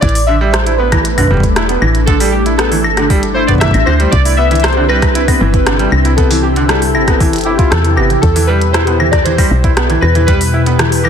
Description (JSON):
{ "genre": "IDM", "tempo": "117 BPM", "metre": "4/4", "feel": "straight", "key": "unclear", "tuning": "A4 = 440 Hz", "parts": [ { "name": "warbly lo-fi synth keys", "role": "melody", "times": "0.0-11.1 s", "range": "F4 to E5", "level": "-17 LUFS", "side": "equal", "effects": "chorus, phaser, tape echo" }, { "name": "glassy FM pad", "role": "sustained chords", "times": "0.0-11.1 s", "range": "B2 to G4", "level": "-18 LUFS", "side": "left 3 dB", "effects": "ensemble chorus, built-in reverb" }, { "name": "felt-muted upright piano", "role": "arpeggios", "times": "0.0-11.1 s", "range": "D3 to E4", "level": "-17 LUFS", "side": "right 4 dB", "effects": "tape echo" }, { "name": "woody FM bass", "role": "bass", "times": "0.0-11.1 s", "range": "E1 to E2", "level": "-15 LUFS", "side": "equal", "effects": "none" }, { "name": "electronic kick drum", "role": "drums", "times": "0.0-10.4 s", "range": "none", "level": "-13 LUFS", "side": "equal", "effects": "overdrive" }, { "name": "glitchy drum kit", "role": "drums", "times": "0.0-11.1 s", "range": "claves, hi-hat, rim click", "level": "-17 LUFS", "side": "left 1 dB", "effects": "soft clipping on snare" } ], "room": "little or no reverb", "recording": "dense, heavily limited modern master", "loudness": "-9 LUFS", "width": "side -8 dB against mid", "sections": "0.0-11.1 A section", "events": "none", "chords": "0.0 Asus4; 4.1 Cadd9; 8.2 Em" }